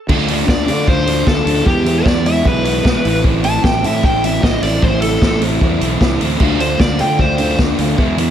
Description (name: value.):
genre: indie rock.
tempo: 152 BPM.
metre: 4/4.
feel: straight.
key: unclear.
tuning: A4 = 440 Hz.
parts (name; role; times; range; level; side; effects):
sludgy distorted guitar; riff; 0.1-8.3 s; A2 to F4; -17 LUFS; equal; overdrive.
fuzz fingered electric bass; bass; 0.1-8.3 s; A1 to D3; -20 LUFS; equal; overdrive.
vintage drum kit; drums; 0.1-8.3 s; crash cymbal, hi-hat, kick drum, snare drum; -17 LUFS; equal; none.
biting overdriven guitar; melody; 0.5-7.6 s; G4 to A5; -19 LUFS; equal; spring reverb.
room: small room ambience.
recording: none.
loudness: -12 LUFS.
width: side -9 dB against mid.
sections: 0.1-8.3 A section.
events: overdriven electric guitar solo 0.1-8.3.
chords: 0.1 Dm7; 1.7 E5; 3.0 Am; 6.4 Dm7.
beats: | 0.09 0.48 0.88 1.27 | 1.66 2.06 2.45 2.84 | 3.24 3.63 4.03 4.42 | 4.82 5.21 5.61 6.00 | 6.40 6.79 7.19 7.58 | 7.98.